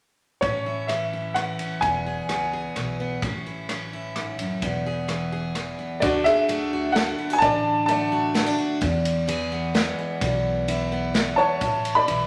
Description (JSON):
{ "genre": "honky-tonk and classic country", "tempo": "129 BPM", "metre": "3/4", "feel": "straight", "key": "A major", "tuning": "A4 = 443 Hz", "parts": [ { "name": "clear upright piano", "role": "melody", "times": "0.4-2.9, 6.0-8.5, 11.4-12.3 s", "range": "F#4 to B5", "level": "-25 LUFS", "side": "equal", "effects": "none" }, { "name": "picked steel-string acoustic guitar", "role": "accompaniment", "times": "0.4-12.3 s", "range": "E2 to G#4", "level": "-30 LUFS", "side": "equal", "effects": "none" }, { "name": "upright bass", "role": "bass", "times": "0.4-12.3 s", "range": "E1 to E2", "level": "-34 LUFS", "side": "equal", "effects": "none" }, { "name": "natural country drum kit", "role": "drums", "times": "0.4-12.2 s", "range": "kick drum, ride cymbal, rim click, snare drum", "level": "-32 LUFS", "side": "equal", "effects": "none" } ], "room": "wet large studio reverb, RT60 0.9 s", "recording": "none", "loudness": "-24 LUFS", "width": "mono", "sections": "0.4-6.0 A section; 6.0-12.3 B section", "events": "none", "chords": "0.4 A; 1.8 E; 3.2 A; 4.6 E; 6.0 D; 8.8 E; 11.6 A" }